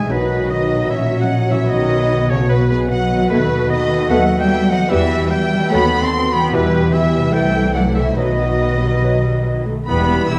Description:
classical, dramatic, fast romantic movement for symphony orchestra; 138-152 BPM; 4/4; straight; A4 = 437 Hz
warm symphonic violin section; melody; 0.0-10.4 s; B4 to E6; -27 LUFS; equal
bright oboe; second line; 0.0-10.4 s; B4 to C6; -28 LUFS; equal
mellow clarinet; second line; 0.0-10.4 s; G4 to D#5; -31 LUFS; equal
silver concert flute; second line; 0.0-10.4 s; B4 to C6; -27 LUFS; equal
warm symphonic violin section; second line; 0.0-10.4 s; B3 to A5; -31 LUFS; equal
mellow bassoon; accompaniment; 0.0-10.4 s; E3 to A3; -30 LUFS; equal
warm symphonic viola section; accompaniment; 0.0-10.4 s; F#3 to A4; -26 LUFS; equal
clear trombone section; sustained chords; 0.0-10.4 s; A#2 to A3; -30 LUFS; equal
warm French horn section; sustained chords; 0.0-10.4 s; A3 to A4; -27 LUFS; equal
concert harp; arpeggios; 0.0-10.4 s; E2 to D#5; -27 LUFS; equal
dark symphonic double bass section; bass; 0.0-10.4 s; E1 to E2; -23 LUFS; equal
warm symphonic cello section; bass; 0.0-10.4 s; E2 to C4; -24 LUFS; equal
clear trumpet; stabs; 9.9-10.4 s; B3 to E4; -26 LUFS; equal
wet concert hall reverb, RT60 1.8 s; dark, warm production; -16 LUFS; mono
0.0-9.9 A section
0.1 B; 0.9 F#7/A#; 1.7 B; 3.3 B7/D#; 4.9 Em; 5.7 B7/D#; 6.5 Em; 7.3 Am/C; 8.2 B
| 0.10 0.51 0.91 1.31 | 1.72 2.11 2.51 2.91 | 3.31 3.70 4.11 4.50 | 4.91 5.31 5.71 6.12 | 6.52 6.93 7.33 7.75 | 8.18 8.61 9.04 9.47 | 9.89 10.31

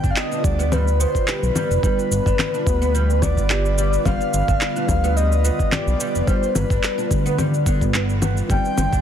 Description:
organic downtempo; 108 BPM; 4/4; swing 54% on 16ths; A4 = 440 Hz
breathy flute-like synth lead; melody; 0.0-9.0 s; B4 to G5; -25 LUFS; equal; tremolo, analog chorus, digital delay
deep mellow chord stab; accompaniment; 0.0-9.0 s; D3 to C4; -30 LUFS; left 2 dB; chorus, sidechain pumping, digital delay
airy breathy pad; sustained chords; 0.0-9.0 s; D3 to C6; -29 LUFS; right 2 dB; chorus, sidechain pumping
oud; arpeggios; 0.0-9.0 s; D3 to G4; -26 LUFS; left 1 dB; digital delay
smooth synth bass; bass; 0.0-9.0 s; F1 to D2; -20 LUFS; equal
electronic kick drum; drums; 0.0-9.0 s; -22 LUFS; equal
electronic shaker, handclaps and congas; drums; 0.0-9.0 s; -25 LUFS; left 2 dB
djembe; percussion; 8.8-8.9 s; barely audible
digital ambience; dense, heavily limited modern master; -17 LUFS; side -9 dB against mid
0.0-9.0 A section
0.0 G7; 8.5 Cm
0.17 0.72 1.28 | 1.83 2.39 2.94 3.50 | 4.05 4.61 5.17 5.72 | 6.28 6.83 7.39 7.94 | 8.50

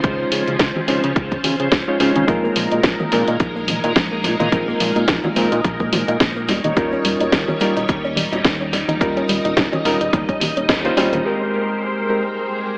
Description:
nu-disco, nu disco; 107 BPM; 4/4; swing 56% on 16ths; Ab major; A4 = 440 Hz
bright reed electric piano; accompaniment; 0.0-12.2 s; G3 to Db5; -22 LUFS; equal; overdrive, dub echo
string machine, full ensemble; sustained chords; 0.0-12.8 s; F3 to Eb5; -23 LUFS; equal; ensemble chorus, sidechain pumping
fat analog bass; bass; 0.0-11.2 s; Eb1 to Db3; -24 LUFS; equal; sidechain pumping
electronic kick drum; drums; 0.0-10.8 s; -20 LUFS; equal
house drum kit; drums; 0.0-12.8 s; hi-hat, shaker, snare drum; -21 LUFS; equal; low-pass filter on hats, low-pass filter on snare, low-pass filter on perc, low-pass filter on room, dub echo
bongos, congas and egg shaker; percussion; 0.5-11.2 s; -28 LUFS; equal
soft round pluck; arpeggios; 2.3-11.2 s; F3 to Eb4; -24 LUFS; equal; chorus, sidechain pumping, analog delay
wet spring reverb, RT60 2.3 s; echo-heavy mix, AM radio sound; -16 LUFS; side -34 dB against mid
0.0-11.3 A section; 11.3-12.8 B section
band accent 10.7
0.0 Dbmaj9; 2.3 Bb7sus4; 6.5 Eb7; 11.3 Abmaj9
| 0.04 0.60 1.16 1.72 | 2.28 2.84 3.40 3.96 | 4.52 5.08 5.64 6.21 | 6.77 7.33 7.89 8.45 | 9.01 9.57 10.13 10.69 | 11.25 11.81 12.37

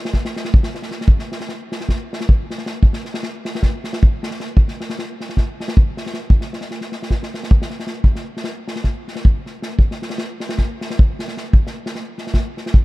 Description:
balkan folk; 310 BPM (eighths); 9/8; straight
unplugged drum kit; percussion; 0.1-12.8 s; kick drum, snare drum; -17 LUFS; equal
little or no reverb; -17 LUFS; side -19 dB against mid
0.0-1.1 A section; 1.1-12.8 B section
0.12 0.31 0.50 0.70 0.89 | 1.08 1.28 1.47 1.66 1.86 2.05 2.25 2.44 2.63 | 2.83 3.02 3.21 3.41 3.60 3.79 3.99 4.18 4.38 | 4.57 4.76 4.96 5.15 5.34 5.54 5.73 5.92 6.12 | 6.31 6.50 6.70 6.89 7.08 7.28 7.47 7.66 7.86 | 8.05 8.24 8.44 8.63 8.82 9.02 9.21 9.40 9.60 | 9.79 9.98 10.18 10.37 10.56 10.76 10.95 11.14 11.34 | 11.53 11.72 11.92 12.11 12.30 12.50 12.69

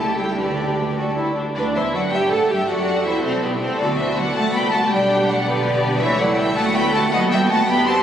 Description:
quick classical-period movement for string orchestra; 108 BPM (dotted quarters); 6/8; rubato; A4 = 438 Hz
rich studio violin section; melody; 0.0-8.0 s; B4 to C6; -23 LUFS; left 1 dB
clear studio violin section; second line; 0.0-8.0 s; G4 to A5; -23 LUFS; equal
warm studio viola section; accompaniment; 0.0-8.0 s; A3 to A4; -22 LUFS; right 1 dB
rich studio cello section; bass; 0.0-8.0 s; B2 to C4; -25 LUFS; right 2 dB
rich studio double bass section; bass; 0.0-8.0 s; B1 to A2; -28 LUFS; right 2 dB
wet cathedral reverb, RT60 5.7 s; recorded on a phone in the room, studio reverb; -17 LUFS; side -9 dB against mid
0.0-1.6 A section; 1.6-8.0 B section
0.4 G/D; 1.0 D5; 1.6 Dadd9; 2.1 Emadd11/G; 2.7 D13; 3.8 D; 4.4 Am13/C; 4.9 G/B; 6.0 A7/C#; 6.6 D; 7.1 B7/D#
| 0.37 0.97 | 1.56 2.13 | 2.69 3.24 | 3.80 4.36 | 4.91 5.46 | 6.01 6.57 | 7.12 7.68

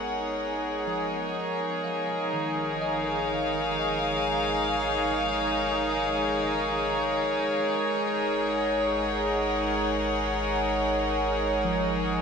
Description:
ambient; 61 BPM; 3/4; straight; G# dorian; A4 = 442 Hz
warm studio string section; sustained chords; 0.0-12.2 s; D#4 to F#5; -25 LUFS; equal; low-pass filter
bell-like tine electric piano; arpeggios; 0.0-12.2 s; D#3 to G#5; -36 LUFS; right 1 dB; fast stereo tremolo, tape echo
round analog bass; bass; 0.0-12.2 s; G#1; -40 LUFS; right 1 dB
analog drone; drone; 0.0-12.2 s; G#3; -39 LUFS; right 3 dB; chorus
wet huge ambient reverb, RT60 8.7 s; -24 LUFS; side -6 dB against mid
0.0-12.2 A section
fade-in on tine electric piano 0.0-12.2; fade-in on analog synth bass 0.0-12.2; fade-in on synth drone 0.0-12.2
0.0 G#m7; 1.8 A#m/G#; 7.7 G#5
0.88 | 1.85 2.83 3.80 | 4.78 5.76 6.75 | 7.74 8.72 9.70 | 10.67 11.65

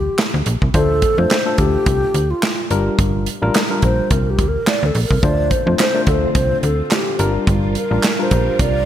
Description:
early-eighties boogie funk; 107 BPM; 4/4; swing 56% on 16ths; A4 = 440 Hz
mellow hollow wooden-headed alto flute; melody; 0.0-8.9 s; F4 to D5; -20 LUFS; equal
slap-like FM bass; bass; 0.0-8.9 s; G1 to F2; -18 LUFS; equal
modern studio drum kit; drums; 0.2-8.7 s; handclaps, hi-hat, kick drum, snare drum; -19 LUFS; right 1 dB
tine electric piano; accompaniment; 0.7-8.9 s; G3 to C5; -22 LUFS; left 3 dB; medium stereo tremolo
soft string machine; sustained chords; 5.2-8.9 s; D3 to Bb4; -27 LUFS; equal; ensemble chorus
group handclap; percussion; 5.8-8.2 s; -27 LUFS; right 4 dB
light reverb, studio reverb; bright 1980s-style digital production; -14 LUFS; side -11 dB against mid
0.0-8.9 A section
alto flute solo 0.0-8.9
0.0 Gm; 0.7 Dm7; 2.7 Gm7; 5.2 Dm7; 7.2 Gm7
0.18 | 0.74 1.30 1.86 2.43 | 2.99 3.55 4.11 4.67 | 5.23 5.79 6.35 6.91 | 7.47 8.03 8.59

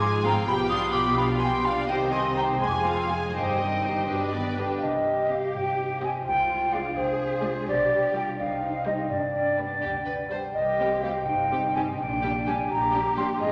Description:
cinematic, playful, whimsical film cue; 84 BPM (dotted quarters); 6/8; straight; C minor; A4 = 440 Hz
rich studio violin section; melody; 0.0-13.5 s; F4 to Ab5; -38 LUFS; equal
dark studio violin section; second line; 0.0-13.5 s; C4 to C6; -38 LUFS; equal
mellow hollow silver concert flute; second line; 0.0-13.5 s; C5 to Eb6; -29 LUFS; equal
warm studio viola section; accompaniment; 0.0-13.5 s; G3 to B4; -36 LUFS; equal
dark French horn section; sustained chords; 0.0-4.8 s; B2 to C5; -34 LUFS; equal
concert harp; arpeggios; 0.0-13.5 s; F2 to C5; -35 LUFS; equal
dark studio cello section; bass; 0.0-13.5 s; F2 to Ab4; -35 LUFS; equal
rich studio double bass section; bass; 0.0-13.5 s; F1 to D2; -40 LUFS; equal
wet scoring stage reverb, RT60 1.7 s; -26 LUFS; mono
0.0-4.8 A section; 4.8-13.5 B section
0.5 G7/B; 1.9 Cm; 2.6 Fm; 3.3 Cm/G; 4.1 G; 4.8 Cm; 6.3 Dm7b5/C; 7.7 G7/B; 8.4 Cm; 9.1 G; 10.6 Cm; 12.0 Gm/Bb
| 0.47 1.18 | 1.89 2.62 | 3.35 4.09 | 4.82 5.54 | 6.25 6.96 | 7.67 8.38 | 9.10 9.82 | 10.55 11.27 | 11.99 12.70 | 13.40

